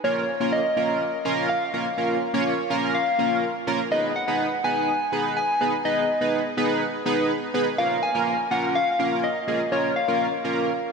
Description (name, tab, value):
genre	pop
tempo	124 BPM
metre	4/4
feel	straight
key	unclear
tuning	A4 = 440 Hz
part	soft struck synth lead	melody	0.0-10.9 s	C#5 to G#5	-24 LUFS	left 1 dB	chorus, diffuse ambient delay
part	chorused polysynth	accompaniment	0.0-10.7 s	A#3 to C#5	-24 LUFS	right 2 dB	none
room	wet lush hall reverb, RT60 2.7 s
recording	dreamy mix soaked in reverb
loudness	-21 LUFS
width	side -5 dB against mid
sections	0.0-10.9 A section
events	none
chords	0.0 A#m; 3.9 G#m; 7.8 A#m